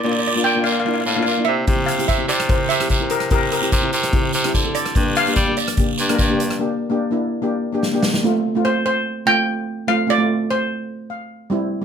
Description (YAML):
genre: calypso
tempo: 146 BPM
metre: 4/4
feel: straight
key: unclear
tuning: A4 = 441 Hz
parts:
  - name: steel pan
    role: melody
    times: 0.0-11.3 s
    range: Bb4 to G5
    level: -20 LUFS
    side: equal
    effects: none
  - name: steel pan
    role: accompaniment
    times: 0.0-11.8 s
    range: G3 to F5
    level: -22 LUFS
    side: equal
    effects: none
  - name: clear baritone saxophone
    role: bass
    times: 0.0-6.6 s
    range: G2 to G3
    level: -22 LUFS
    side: left 1 dB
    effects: none
  - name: guiro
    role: percussion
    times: 0.0-6.3 s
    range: none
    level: -26 LUFS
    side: right 4 dB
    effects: none
  - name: street-band drum kit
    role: drums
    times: 1.7-8.2 s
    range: hi-hat, kick drum, rim click, snare drum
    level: -21 LUFS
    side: equal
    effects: none
room: moderate studio ambience, RT60 0.5 s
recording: none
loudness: -16 LUFS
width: side -7 dB against mid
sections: 0.0-8.2 A section; 8.2-11.8 B section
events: break 6.6-8.2; drum fill 7.8-8.2; steel pan fill 10.9-11.5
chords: 0.0 Bb; 1.7 C7; 5.0 Gm; 8.2 F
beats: | 0.04 0.45 0.86 1.27 | 1.68 2.09 2.50 2.91 | 3.32 3.73 4.14 4.55 | 4.96 5.37 5.78 6.19 | 6.60 7.01 7.42 7.83 | 8.24 8.65 9.06 9.46 | 9.87 10.28 10.69 11.10 | 11.51